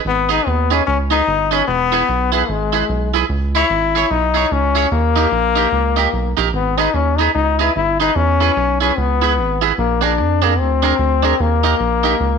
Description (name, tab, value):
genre	ska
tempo	148 BPM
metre	4/4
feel	swing 61% on 8ths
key	G# harmonic minor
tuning	A4 = 444 Hz
part	brilliant trombone	melody	0.1-12.4 s	G#3 to E4	-17 LUFS	left 8 dB	none
part	rubbery square bass	bass	0.1-12.4 s	E1 to E#2	-19 LUFS	right 2 dB	none
part	electric guitar at the edge of break-up	accompaniment	0.3-12.1 s	D4 to C#5	-19 LUFS	right 13 dB	lush chorus
room	moderate echo chamber reverb, RT60 1.3 s, studio reverb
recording	1960s-style stereo with parts hard left and right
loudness	-14 LUFS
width	side -6 dB against mid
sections	0.1-12.4 A section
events	none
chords	0.1 G#m; 1.7 E; 3.3 C#m; 4.9 D#; 6.5 G#m; 8.2 E; 9.8 A#7; 11.4 D#